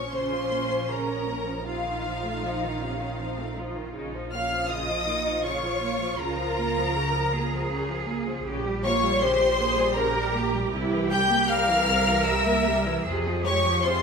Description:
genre	classical, slow romantic movement for string orchestra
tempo	79 BPM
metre	3/4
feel	rubato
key	Bb minor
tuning	A4 = 441 Hz
part	rich studio violin section	melody	0.0-14.0 s	F5 to G6	-28 LUFS	left 2 dB	none
part	rich studio violin section	second line	0.0-14.0 s	F4 to G5	-28 LUFS	left 2 dB	none
part	rich studio viola section	accompaniment	0.0-14.0 s	C3 to G4	-30 LUFS	right 2 dB	none
part	warm studio double bass section	bass	0.0-14.0 s	Bb1 to F2	-32 LUFS	right 2 dB	none
part	rich studio cello section	bass	0.2-14.0 s	C4 to Bb4	-32 LUFS	right 3 dB	none
room	moderate recital hall reverb, RT60 1.3 s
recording	minimal, uncompressed stereo recording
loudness	-23 LUFS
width	side -5 dB against mid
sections	0.0-14.0 A section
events	none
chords	0.0 Bbm; 1.7 F7/Bb; 4.0 Bbm; 6.2 Bbm/Db; 8.5 Gdim/Bb; 10.7 C7; 13.0 Fm

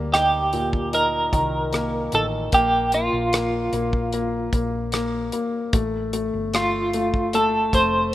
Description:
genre	pop ballad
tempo	75 BPM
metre	4/4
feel	straight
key	Bb major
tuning	A4 = 441 Hz
part	clear baby grand piano	accompaniment	0.0-8.1 s	Bb2 to Eb4	-25 LUFS	left 2 dB	none
part	hollow-body short-scale fingered electric bass	bass	0.0-8.1 s	F1 to D2	-30 LUFS	equal	none
part	twelve-string electric guitar	melody	0.1-8.1 s	F4 to C5	-21 LUFS	right 1 dB	tremolo
part	damped 70s drum kit	drums	0.1-7.9 s	hi-hat, kick drum, rim click	-25 LUFS	equal	none
room	light reverb, studio ambience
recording	rough home demo mix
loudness	-20 LUFS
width	side -14 dB against mid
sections	0.0-8.1 A section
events	none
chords	0.0 Eb; 2.5 Bb5; 5.7 F

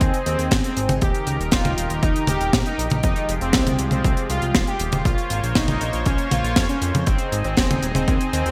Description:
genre	italo disco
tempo	119 BPM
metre	4/4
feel	straight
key	unclear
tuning	A4 = 440 Hz
part	analog synth brass	melody	0.0-8.5 s	C4 to G4	-28 LUFS	equal	chorus, digital delay
part	lush unison pad	sustained chords	0.0-8.5 s	Eb3 to Db5	-30 LUFS	equal	chorus
part	fat analog bass	bass	0.0-8.5 s	Eb1 to F2	-28 LUFS	equal	tube saturation
part	electronic kick drum	drums	0.0-8.2 s	none	-24 LUFS	equal	overdrive
part	tight funk drum kit	drums	0.0-8.5 s	hi-hat, snare drum, toms	-26 LUFS	equal	gated reverb
room	light reverb, small room reverb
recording	bright 1980s-style digital production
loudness	-21 LUFS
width	mono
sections	0.0-8.5 A section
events	none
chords	0.0 Ab; 1.0 Eb; 3.0 Fmadd9; 5.1 Bbmadd9; 7.1 Ab

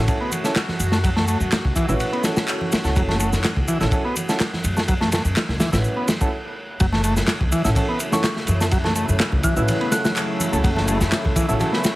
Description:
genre	breakbeat, breaks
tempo	125 BPM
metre	4/4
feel	swing 53% on 16ths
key	F# minor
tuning	A4 = 440 Hz
part	lush unison pad	sustained chords	0.0-12.0 s	C#3 to F#4	-30 LUFS	left 1 dB	chorus, vintage 12-bit sampler grit, sidechain pumping
part	combo organ	riff	0.0-11.8 s	E3 to E4	-25 LUFS	equal	tube saturation, vintage 12-bit sampler grit, tape echo
part	dark baby grand piano	stabs	0.0-11.7 s	C#4 to B4	-27 LUFS	right 2 dB	tape echo
part	upright bass	bass	0.0-11.6 s	F#1 to F#2	-23 LUFS	equal	tube saturation
part	crunchy breakbeat drum kit	drums	0.1-12.0 s	kick drum, ride cymbal, snare drum	-22 LUFS	equal	none
part	electronic shaker and handclaps	drums	0.1-11.9 s	none	-28 LUFS	equal	none
part	congas	percussion	0.3-11.7 s	none	-32 LUFS	right 2 dB	none
part	glassy synth bell	melody	8.1-10.1 s	C#6 to F#6	-28 LUFS	equal	chorus, telephone sound, tape echo
room	light reverb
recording	heavily compressed radio sound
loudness	-18 LUFS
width	side -18 dB against mid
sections	0.0-6.8 A section; 6.8-12.0 B section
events	stop 6.3-6.8; drop 6.8-12.0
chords	0.0 F#m7

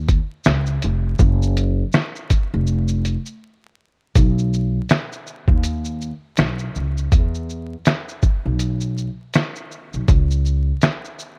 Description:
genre	lo-fi hip hop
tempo	81 BPM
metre	4/4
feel	swing 59% on 16ths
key	unclear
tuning	A4 = 441 Hz
part	upright bass	bass	0.0-10.7 s	E#1 to E2	-22 LUFS	equal	none
part	lo-fi sampler-style drum kit	drums	0.1-11.4 s	finger snaps, hi-hat, kick drum, shaker, snare drum	-20 LUFS	equal	none
room	little or no reverb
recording	vinyl crackle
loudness	-20 LUFS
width	mono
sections	0.0-4.2 A section; 4.2-11.4 B section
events	break 3.4-4.2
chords	none

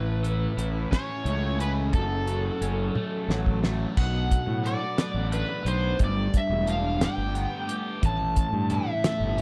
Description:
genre	psychedelic rock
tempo	59 BPM (dotted quarters)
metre	6/8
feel	straight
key	unclear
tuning	A4 = 440 Hz
part	overdriven slide guitar	melody	0.0-9.4 s	A4 to A5	-34 LUFS	equal	slapback echo
part	string machine, cellos	sustained chords	0.0-9.4 s	E3 to B4	-40 LUFS	equal	none
part	overdriven semi-hollow guitar	riff	0.0-9.4 s	F#2 to B4	-34 LUFS	equal	phaser
part	fuzz fingered electric bass	bass	0.0-9.4 s	E1 to A2	-30 LUFS	equal	overdrive
part	cloth-damped thuddy drum kit	drums	0.2-9.4 s	crash cymbal, hi-hat, kick drum, snare drum, toms	-28 LUFS	equal	none
part	congas	percussion	8.0-9.4 s	none	-39 LUFS	equal	none
room	studio ambience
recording	dry, close 1970s-style studio recording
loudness	-26 LUFS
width	mono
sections	0.0-4.0 A section; 4.0-9.4 B section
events	drum fill 2.9-4.0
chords	0.0 A; 1.9 F#m; 4.0 Bm7; 6.0 G; 8.0 A

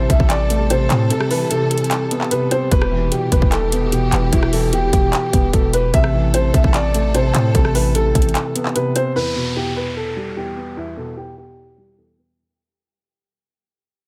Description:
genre	hip hop, trap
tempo	149 BPM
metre	4/4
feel	half-time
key	E minor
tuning	A4 = 440 Hz
part	dark concert grand piano	melody	0.0-12.3 s	E4 to E5	-24 LUFS	equal	low-pass filter
part	felt-muted upright piano	accompaniment	0.0-12.4 s	E2 to B4	-25 LUFS	equal	low-pass filter
part	dark symphonic string section	sustained chords	0.0-9.1 s	C3 to A4	-30 LUFS	equal	none
part	hard-hitting 808-style bass	bass	0.0-8.3 s	E1 to A2	-22 LUFS	equal	none
part	trap drum kit	drums	0.1-9.1 s	handclaps, hi-hat, kick drum, rim click	-20 LUFS	equal	none
part	downlifter	sound effects	9.2-12.4 s	none	-32 LUFS	equal	none
room	studio ambience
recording	none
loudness	-17 LUFS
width	mono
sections	0.0-9.2 A section; 9.2-12.4 B section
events	break 1.1-2.7, 8.4-9.2; fade-out 9.2-12.4; filter sweep 9.2-12.4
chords	0.0 Amadd9; 2.7 Em; 5.9 Amadd9; 9.2 Em

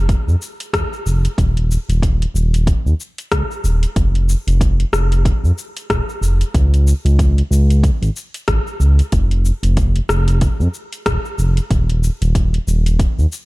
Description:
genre	organic downtempo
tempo	93 BPM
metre	4/4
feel	swing 58% on 16ths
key	unclear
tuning	A4 = 444 Hz
part	smooth gliding synth bass	bass	0.0-13.3 s	Eb1 to F2	-14 LUFS	equal	none
part	deep house drum kit	drums	0.1-13.5 s	hi-hat, rim click, shaker	-25 LUFS	left 2 dB	overdrive
part	electronic kick drum	drums	0.1-13.1 s	none	-19 LUFS	equal	overdrive
room	little or no reverb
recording	none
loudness	-14 LUFS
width	side -22 dB against mid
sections	0.0-13.5 A section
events	none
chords	none

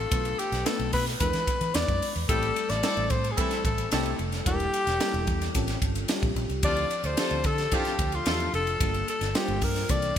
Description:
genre	polished 1980s jazz-funk pop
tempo	110 BPM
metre	4/4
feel	straight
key	unclear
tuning	A4 = 440 Hz
part	breathy alto saxophone	melody	0.0-10.2 s	F4 to D5	-29 LUFS	left 2 dB	none
part	FM electric piano with soft pad layer	accompaniment	0.0-10.2 s	E3 to C5	-34 LUFS	left 2 dB	lush chorus
part	vintage muted fingered electric bass	bass	0.0-10.2 s	E1 to E3	-31 LUFS	right 1 dB	none
part	crisp fusion drum kit	drums	0.1-10.2 s	hi-hat, kick drum, ride cymbal, snare drum	-29 LUFS	right 1 dB	gated reverb
part	dark horn section	second line	2.3-8.5 s	E3 to A4	-36 LUFS	right 1 dB	digital delay
room	moderate lush hall reverb, RT60 2.8 s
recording	bright 1980s-style digital production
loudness	-24 LUFS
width	side -9 dB against mid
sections	0.0-10.2 A section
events	none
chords	0.1 Bm7b5; 1.2 E7; 2.3 Am7; 4.5 Em7b5; 5.5 A7alt; 6.6 Dm11; 8.8 Gm7

